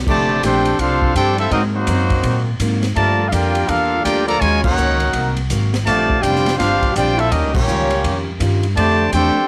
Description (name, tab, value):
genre	jazz, big band swing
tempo	166 BPM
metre	4/4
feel	swing 63% on 8ths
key	F major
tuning	A4 = 439 Hz
part	upright bass	bass	0.0-9.4 s	F1 to Bb2	-22 LUFS	equal	none
part	bright trumpet section	melody	0.1-9.5 s	Bb3 to Bb5	-20 LUFS	equal	cassette tape
part	clear trombone section	second line	0.1-9.5 s	C3 to G4	-24 LUFS	equal	cassette tape
part	picked steel-string acoustic guitar	accompaniment	0.1-9.4 s	Ab2 to A4	-28 LUFS	equal	cassette tape
part	swinging big-band drum kit	drums	0.1-9.2 s	crash cymbal, hi-hat, kick drum, ride cymbal, snare drum	-26 LUFS	equal	cassette tape
room	light reverb, small room ambience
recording	home recording on cassette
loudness	-17 LUFS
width	mono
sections	0.1-9.5 A section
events	band accent 4.6, 7.5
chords	0.1 F69; 1.5 Ab9; 3.0 Gm9; 4.4 Ebm7; 5.1 Ab9; 5.9 Bb69; 7.3 Eb9; 8.8 F69